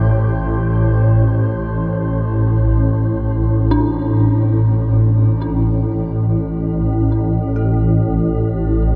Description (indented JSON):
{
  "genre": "dark ambient drone",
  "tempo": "free time",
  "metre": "none",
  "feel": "none",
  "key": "unclear",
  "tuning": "A4 = 441 Hz",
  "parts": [
    { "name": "deep dark ambient pad", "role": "sustained chords", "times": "0.0-4.6 s", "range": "A3 to G4", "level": "-36 LUFS", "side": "equal", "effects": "chorus, built-in reverb, shimmer reverb" },
    { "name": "swarming drone", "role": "drone", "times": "0.0-9.0 s", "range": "A1 to A2", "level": "-16 LUFS", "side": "equal", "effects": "built-in reverb" },
    { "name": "wind-like tuned noise texture", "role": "texture", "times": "0.0-4.6 s", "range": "C5", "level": "-37 LUFS", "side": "equal", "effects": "built-in reverb, shimmer reverb" },
    { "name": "dark detuned synth bell", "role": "arpeggios", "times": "3.7-9.0 s", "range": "D4 to A4", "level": "-28 LUFS", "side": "equal", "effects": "chorus, delay, shimmer reverb" }
  ],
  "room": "wet huge ambient reverb, RT60 7.7 s",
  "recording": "dreamy mix soaked in reverb",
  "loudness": "-16 LUFS",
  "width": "mono",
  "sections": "0.0-4.6 A section; 4.6-9.0 B section",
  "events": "fade-in on synth bell 4.6-9.0",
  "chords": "0.0 Am; 4.6 A5"
}